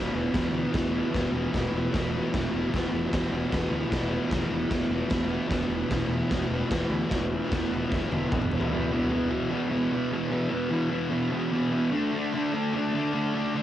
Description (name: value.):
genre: garage rock duo or trio.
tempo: 150 BPM.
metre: 4/4.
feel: straight.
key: unclear.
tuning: A4 = 440 Hz.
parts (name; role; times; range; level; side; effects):
fuzz guitar; riff; 0.0-13.6 s; E2 to D4; -26 LUFS; equal; distortion.
growling fingered electric bass; bass; 0.0-8.6 s; E1 to D2; -35 LUFS; equal; overdrive.
raw garage drum kit; drums; 0.3-8.7 s; crash cymbal, kick drum, snare drum, toms; -30 LUFS; equal; cassette tape.
room: light reverb.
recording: home recording on cassette.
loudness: -25 LUFS.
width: side -12 dB against mid.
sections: 0.0-8.7 A section; 8.7-13.6 B section.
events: drum fill 7.9-8.7.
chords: 0.0 E5; 11.9 D5.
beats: 0.34 | 0.74 1.13 1.53 1.93 | 2.33 2.72 3.12 3.52 | 3.91 4.31 4.71 5.10 | 5.50 5.90 6.30 6.70 | 7.10 7.50 7.90 8.30 | 8.71 9.11 9.51 9.91 | 10.32 10.72 11.12 11.52 | 11.92 12.32 12.73 13.13 | 13.53.